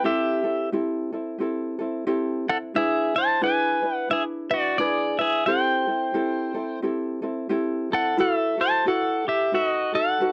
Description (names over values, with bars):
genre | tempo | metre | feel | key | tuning
Hawaiian | 88 BPM | 4/4 | swing 60% on 8ths | unclear | A4 = 442 Hz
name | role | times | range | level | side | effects
pedal steel guitar | melody | 0.0-10.3 s | F#4 to A5 | -24 LUFS | equal | none
ukulele | accompaniment | 0.0-10.3 s | C4 to B4 | -29 LUFS | equal | none
room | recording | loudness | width
light reverb | dry, close 1970s-style studio recording | -24 LUFS | mono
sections
0.0-10.3 A section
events
none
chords
0.0 Am7/C; 2.8 E7; 5.5 Am7; 8.2 B7sus4; 9.5 B7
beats
| 0.04 0.71 1.39 2.07 | 2.75 3.43 4.11 4.79 | 5.47 6.15 6.83 7.50 | 8.18 8.86 9.54 10.22